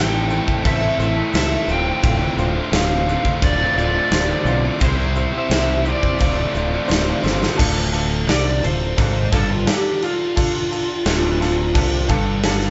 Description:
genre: classic rock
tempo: 86 BPM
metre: 4/4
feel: straight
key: D minor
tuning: A4 = 440 Hz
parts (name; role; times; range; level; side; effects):
- overdriven slide guitar; melody; 0.0-12.1 s; F4 to G5; -25 LUFS; equal; analog delay
- clear grand piano; accompaniment; 0.0-12.7 s; D4 to C6; -32 LUFS; equal; none
- picked steel-string acoustic guitar; accompaniment; 0.0-12.7 s; C3 to C5; -34 LUFS; equal; none
- biting overdriven guitar; riff; 0.0-12.7 s; D2 to C5; -28 LUFS; equal; none
- overdriven electric guitar; riff; 0.0-12.7 s; D2 to C5; -28 LUFS; equal; none
- growling fingered electric bass; bass; 0.0-12.7 s; D1 to C#2; -25 LUFS; equal; overdrive
- tube shaker; percussion; 0.3-12.7 s; none; -48 LUFS; equal; none
- big rock drum kit; drums; 0.5-12.7 s; crash cymbal, kick drum, snare drum; -24 LUFS; equal; none
room: light reverb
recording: band playing live in one room, nothing above 7.8 kHz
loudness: -19 LUFS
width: mono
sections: 0.0-7.6 A section; 7.6-12.7 B section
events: drum fill 7.2-7.6; electric slide guitar solo 7.6-12.7; grand piano fill 11.1-12.7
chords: 0.0 Am; 1.7 Dm7; 4.8 C; 6.2 Dm7; 7.6 Dm

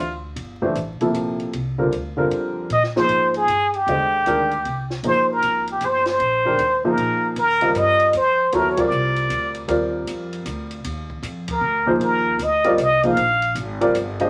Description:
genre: modal jazz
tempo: 155 BPM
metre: 3/4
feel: swing 64% on 8ths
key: Eb major from 7.4 s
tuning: A4 = 440 Hz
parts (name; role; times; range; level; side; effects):
- trumpet with plunger mute; melody; 0.0-0.2, 2.7-13.6 s; F4 to F5; -21 LUFS; equal; none
- upright bass; bass; 0.0-14.3 s; G1 to Bb2; -32 LUFS; equal; none
- compact cocktail drum kit; drums; 0.4-14.3 s; hi-hat, kick drum, ride cymbal, snare drum; -39 LUFS; equal; none
- warm baby grand piano; accompaniment; 0.6-14.3 s; C3 to Eb5; -24 LUFS; equal; none
room: wet small room reverb, RT60 0.6 s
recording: vinyl crackle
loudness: -20 LUFS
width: mono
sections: 0.0-7.4 A section; 7.4-14.3 B section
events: band accent 8.7, 11.4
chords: 0.0 C13sus4; 2.7 Bb13sus4; 7.4 Ebmaj9

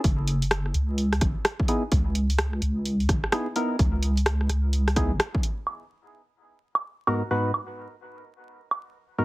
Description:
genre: UK garage, two-step garage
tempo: 128 BPM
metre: 4/4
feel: swing 63% on 16ths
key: G# minor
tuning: A4 = 440 Hz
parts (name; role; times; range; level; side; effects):
- deep soft wobble bass; bass; 0.0-5.2 s; F#1 to C#2; -24 LUFS; equal; chorus, sidechain pumping
- electronic kick drum; drums; 0.0-5.4 s; none; -24 LUFS; equal; overdrive
- punchy analog drum machine; drums; 0.0-8.8 s; hi-hat, rim click, woodblock; -26 LUFS; right 1 dB; low-pass filter on hats, low-pass filter on snare, low-pass filter on perc
- percussive organ stab; stabs; 1.7-9.2 s; G#2 to B4; -28 LUFS; equal; chorus, dub echo
room: light reverb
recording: heavily compressed radio sound, vinyl crackle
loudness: -23 LUFS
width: side -19 dB against mid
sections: 0.0-5.7 A section; 5.7-9.2 B section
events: filter sweep on drum 5.7-9.2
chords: 0.0 N.C.; 0.7 C#m9; 5.7 G#m9

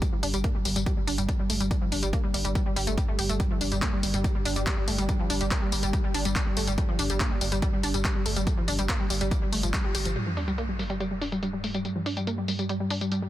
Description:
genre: driving peak-time techno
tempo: 142 BPM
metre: 4/4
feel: straight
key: unclear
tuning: A4 = 438 Hz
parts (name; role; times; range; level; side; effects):
- analog pluck; riff; 0.0-13.2 s; F3 to G4; -30 LUFS; equal; chorus, overdrive, sidechain pumping, dub echo
- analog drone; drone; 0.0-13.3 s; G2 to G3; -34 LUFS; equal; chorus, sidechain pumping
- electronic kick drum; drums; 0.0-9.8 s; none; -28 LUFS; equal; none
- punchy analog drum machine; drums; 0.0-13.2 s; handclaps, hi-hat, tambourine; -32 LUFS; left 1 dB; sidechain pumping on hats, low-pass filter on hats, low-pass filter on snare, sidechain pumping on cymbals, low-pass filter on cymbals, sidechain pumping on perc, low-pass filter on perc
- saturated sub bass; bass; 0.2-10.2 s; G1; -30 LUFS; equal; overdrive, sidechain pumping, low-pass filter
- sub drop; sound effects; 10.2-11.8 s; none; -34 LUFS; equal; none
room: little or no reverb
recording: dense, heavily limited modern master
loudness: -24 LUFS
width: side -14 dB against mid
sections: 0.0-10.2 A section; 10.2-13.3 B section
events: band accent 9.7; impact 10.2-11.8; filter sweep on drum 10.2-13.3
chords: 0.0 G5

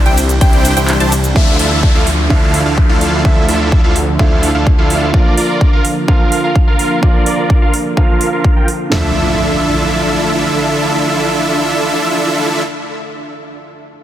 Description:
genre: EDM, festival progressive house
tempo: 127 BPM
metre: 4/4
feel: straight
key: D minor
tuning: A4 = 440 Hz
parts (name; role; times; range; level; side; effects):
- lush unison pad; sustained chords; 0.0-12.6 s; C3 to E5; -22 LUFS; equal; chorus, sidechain pumping
- wide unison pluck; arpeggios; 0.0-1.1 s; G5 to A5; -23 LUFS; left 1 dB; wide subtle chorus, sidechain pumping, digital delay
- dense compressed supersaw; riff; 0.0-12.6 s; D4 to A5; -16 LUFS; right 1 dB; sidechain pumping, low-pass filter, digital delay
- detuned saw bass; bass; 0.0-5.1 s; C2 to D2; -17 LUFS; equal; sidechain pumping
- big-room dance drum kit; drums; 0.1-8.8 s; cabasa, handclaps, hi-hat, ride cymbal; -21 LUFS; right 2 dB; none
- big-room dance drum kit; drums; 0.4-9.0 s; kick drum, snare drum, toms; -11 LUFS; equal; none
- warm baby grand piano; accompaniment; 1.3-14.0 s; D3 to E5; -20 LUFS; right 2 dB; sidechain pumping, digital delay
- downlifter and impact; sound effects; 1.4-5.1, 9.0-12.7 s; none; -23 LUFS; left 1 dB; none
room: light reverb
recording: dense, heavily limited modern master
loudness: -10 LUFS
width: side -12 dB against mid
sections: 0.0-1.4 A section; 1.4-8.9 B section; 8.9-12.7 C section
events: drop 0.0-1.4; break 0.9-1.4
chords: 0.0 Cadd9; 1.4 Dmadd9; 5.1 Bb; 8.9 Dmadd9

